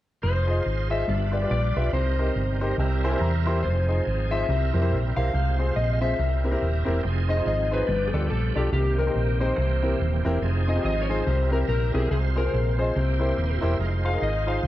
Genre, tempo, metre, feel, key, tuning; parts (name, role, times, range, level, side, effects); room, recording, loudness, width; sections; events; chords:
uptempo gospel; 142 BPM; 4/4; swing 60% on 8ths; F minor; A4 = 441 Hz
electric slide guitar; melody; 0.2-14.7 s; G4 to F5; -29 LUFS; left 3 dB
bright tonewheel organ; sustained chords; 0.2-14.7 s; Db3 to C5; -32 LUFS; right 4 dB; fast rotary speaker, overdrive, chorus vibrato
hollow-body short-scale fingered electric bass; bass; 0.2-14.7 s; Eb1 to F2; -24 LUFS; equal
warm grand piano; accompaniment; 0.5-14.6 s; G2 to C6; -28 LUFS; left 1 dB
light reverb; dark, warm production; -22 LUFS; side -14 dB against mid
0.2-7.0 A section; 7.0-14.7 B section
grand piano fill 2.4-3.6
0.2 Fm7; 1.1 G7; 1.9 Cm7; 2.8 C7; 3.6 Fm7; 4.5 C7; 5.3 Fm/C; 6.2 C7; 7.0 Fm7; 7.9 G7; 8.7 Cm7; 9.6 C7; 10.4 Fm7; 11.3 C7; 12.1 Fm/C; 13.0 C7; 13.8 Fm7